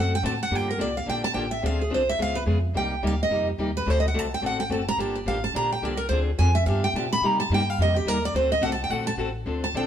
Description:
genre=acoustic string swing (jazz manouche)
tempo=214 BPM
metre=4/4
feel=swing 57% on 8ths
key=G minor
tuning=A4 = 441 Hz
part: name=picked steel-string acoustic guitar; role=melody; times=0.0-9.9 s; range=G4 to B5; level=-25 LUFS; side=right 1 dB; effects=none
part: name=picked steel-string acoustic guitar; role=accompaniment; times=0.0-9.8 s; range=C3 to A4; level=-29 LUFS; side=left 2 dB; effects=none
part: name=upright bass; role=bass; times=0.0-9.9 s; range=F#1 to C3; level=-27 LUFS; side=equal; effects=none
room=moderate stone room reverb, RT60 1.1 s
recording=band playing live in one room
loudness=-22 LUFS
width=side -9 dB against mid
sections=0.5-9.5 A section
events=steel-string acoustic guitar solo 0.0-9.5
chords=0.0 D7; 0.5 Gm9; 1.6 Dm7b5; 2.2 C#7; 2.7 Cm9; 3.9 D7; 5.0 Gm7; 6.1 Dm7b5; 6.7 G7; 7.2 Cm7; 8.3 D7

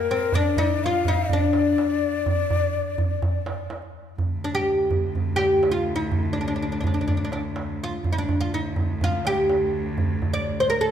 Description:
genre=Arabic maqam ensemble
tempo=124 BPM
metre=4/4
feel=straight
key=D maqam bayati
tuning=A4 = 438 Hz
part: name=oud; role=melody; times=0.0-10.9 s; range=C4 to D5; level=-24 LUFS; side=equal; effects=none
part: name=breathy ney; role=second line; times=0.0-3.7 s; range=Bb4 to F5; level=-25 LUFS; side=left 9 dB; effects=none
part: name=darbuka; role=percussion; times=0.3-10.3 s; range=none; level=-26 LUFS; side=right 2 dB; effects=none
part: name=clear cello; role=drone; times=4.2-10.9 s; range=D2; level=-31 LUFS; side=left 1 dB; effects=none
room=wet concert hall reverb, RT60 1.9 s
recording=minimal, uncompressed stereo recording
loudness=-21 LUFS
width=side -9 dB against mid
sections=0.0-4.2 A section; 4.2-10.9 B section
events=none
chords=none

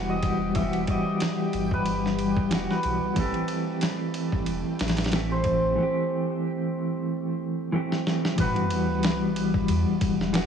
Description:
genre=trip hop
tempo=92 BPM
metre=4/4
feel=swing 55% on 16ths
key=E harmonic minor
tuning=A4 = 443 Hz
part: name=cimbalom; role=melody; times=0.0-10.5 s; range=A4 to E5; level=-31 LUFS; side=equal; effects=tape echo
part: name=mellow electric guitar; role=accompaniment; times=0.0-10.5 s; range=E3 to G4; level=-26 LUFS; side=equal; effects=tremolo, low-pass filter, tape echo
part: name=warm sub bass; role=bass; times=0.0-10.5 s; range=E1 to E2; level=-31 LUFS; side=equal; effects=none
part: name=backwards swelling texture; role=texture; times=0.2-5.8 s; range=G3 to G4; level=-37 LUFS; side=right 1 dB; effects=built-in reverb
part: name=dusty soul sampler-style drum kit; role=drums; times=0.2-10.5 s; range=kick drum, ride cymbal, snare drum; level=-29 LUFS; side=equal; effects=none
part: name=sub drop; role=sound effects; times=8.4-10.5 s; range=none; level=-34 LUFS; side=equal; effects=none
room=light reverb, digital ambience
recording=small room ambience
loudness=-23 LUFS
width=side -7 dB against mid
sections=0.0-8.4 A section; 8.4-10.5 B section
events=drum fill 7.9-8.4; impact 8.4-10.5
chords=0.0 Emadd9; 3.2 Am7; 8.4 Emadd9

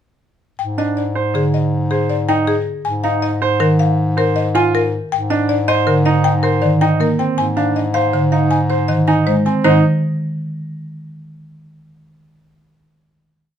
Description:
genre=classical, minimalist pattern music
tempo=159 BPM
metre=6/4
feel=straight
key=Ab lydian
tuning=A4 = 440 Hz
part: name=buzzing marimba with medium mallets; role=melody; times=0.6-9.8 s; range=Ab4 to Ab5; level=-20 LUFS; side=left 6 dB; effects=none
part: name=warm bass clarinet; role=bass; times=0.6-9.8 s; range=Ab2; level=-20 LUFS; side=left 2 dB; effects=none
part: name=clear grand piano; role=arpeggios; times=0.8-9.8 s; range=C4 to C5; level=-19 LUFS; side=right 6 dB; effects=none
part: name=marimba with medium mallets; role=accompaniment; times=1.3-9.8 s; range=D3 to Bb3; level=-18 LUFS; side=right 2 dB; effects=none
room=light reverb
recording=close, detailed microphones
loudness=-14 LUFS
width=side -9 dB against mid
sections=0.6-9.6 A section; 9.6-11.9 final chord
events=none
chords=0.6 Abmaj7; 2.9 Bb7sus4/Ab; 5.1 Ebmaj7/Ab; 7.4 Fm7/Ab; 9.6 Ab5

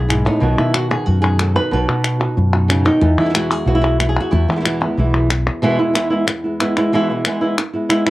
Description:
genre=flamenco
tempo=184 BPM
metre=4/4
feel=straight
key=E major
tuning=A4 = 441 Hz
part: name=flamenco guitar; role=melody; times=0.0-8.1 s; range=E2 to B4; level=-18 LUFS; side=right 1 dB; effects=none
part: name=mellow fretless electric bass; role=bass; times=0.0-5.5 s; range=B1 to E3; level=-17 LUFS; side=equal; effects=none
part: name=flamenco guitar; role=stabs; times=0.1-8.1 s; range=B2 to F#4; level=-23 LUFS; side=right 1 dB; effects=analog delay
part: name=palmas hand claps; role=percussion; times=0.1-8.1 s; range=none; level=-21 LUFS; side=left 2 dB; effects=none
room=moderate small room reverb, RT60 0.5 s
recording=cassette tape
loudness=-14 LUFS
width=side -17 dB against mid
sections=0.0-5.6 A section; 5.6-8.1 B section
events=none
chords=0.4 B; 3.0 E

